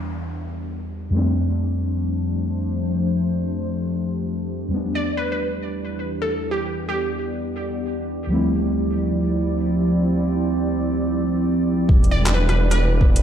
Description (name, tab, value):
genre	future garage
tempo	free time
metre	none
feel	none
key	E phrygian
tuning	A4 = 440 Hz
part	muted felt-like synth keys	accompaniment	0.0-13.2 s	D2 to E4	-24 LUFS	equal	chorus, sidechain pumping, tape echo
part	warbly tape-like pad	sustained chords	0.0-13.2 s	E3 to D5	-24 LUFS	equal	chorus, built-in reverb, phaser, sidechain pumping
part	downlifter	sound effects	0.0-1.1 s	none	-43 LUFS	left 3 dB	none
part	glassy wavetable pluck	melody	5.0-7.5, 12.1-12.9 s	G4 to D5	-26 LUFS	right 1 dB	chorus, tape echo
part	swelling detuned saw bass	bass	11.9-13.2 s	E1	-18 LUFS	equal	sidechain pumping
part	electronic kick drum	drums	11.9-13.1 s	none	-15 LUFS	equal	none
part	garage drum kit	drums	12.0-13.2 s	handclaps, hi-hat, rim click	-26 LUFS	equal	none
room	moderate recital hall reverb, RT60 1.6 s, digital ambience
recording	played on a big sound system in a bare room, large studio reverb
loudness	-20 LUFS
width	side -9 dB against mid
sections	0.0-11.9 A section; 11.9-13.2 B section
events	filter sweep on ambient pad 0.0-11.9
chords	0.0 Em7; 1.1 F69; 4.7 Em7; 8.3 Dm11; 11.9 Em7